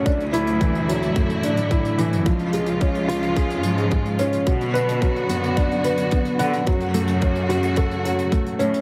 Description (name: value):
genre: piano and strings electronica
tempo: 109 BPM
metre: 4/4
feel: straight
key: F# minor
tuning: A4 = 438 Hz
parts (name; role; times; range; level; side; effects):
- rich studio string section; sustained chords; 0.0-8.8 s; C#3 to F#4; -29 LUFS; equal; sidechain pumping
- felt-muted upright piano; riff; 0.0-8.8 s; E3 to F#5; -25 LUFS; equal; tape echo
- bright symphonic cello section; bass; 0.1-8.8 s; C#2 to D3; -28 LUFS; equal; sidechain pumping
- electronic kick drum; drums; 0.1-8.4 s; none; -23 LUFS; equal; overdrive
- hi-hat; drums; 0.1-8.8 s; none; -42 LUFS; equal; none
room: light reverb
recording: none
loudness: -21 LUFS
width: mono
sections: 0.0-8.8 A section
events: none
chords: 0.1 Dadd9; 2.3 C#; 4.5 Bm; 6.7 F#m